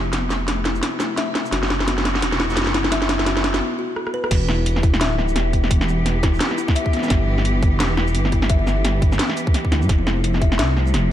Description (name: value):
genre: half-time drum and bass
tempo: 172 BPM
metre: 4/4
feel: swing 58% on 16ths, half-time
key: E minor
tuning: A4 = 440 Hz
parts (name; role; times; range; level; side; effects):
- rich studio cello section; sustained chords; 0.0-11.1 s; C3 to G4; -28 LUFS; right 1 dB; sidechain pumping
- kalimba; arpeggios; 0.0-11.1 s; B3 to E5; -26 LUFS; left 4 dB; ping-pong delay
- dark detuned saw bass; bass; 0.0-11.1 s; D1 to G2; -21 LUFS; equal; none
- drum and bass drum kit; drums; 0.1-11.0 s; crash cymbal, hi-hat, rim click, shaker, snare drum; -22 LUFS; equal; none
- electronic kick drum; drums; 4.3-10.5 s; none; -18 LUFS; equal; none
room: light reverb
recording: dark, warm production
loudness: -17 LUFS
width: side -11 dB against mid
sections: 0.0-4.3 A section; 4.3-11.1 B section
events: build-up 0.0-4.3; drum fill 0.0-3.6, 4.0-4.3; break 3.6-4.3; drop 4.3-11.1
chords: 0.0 F; 1.5 F#dim; 4.3 Em; 7.1 G6; 9.9 F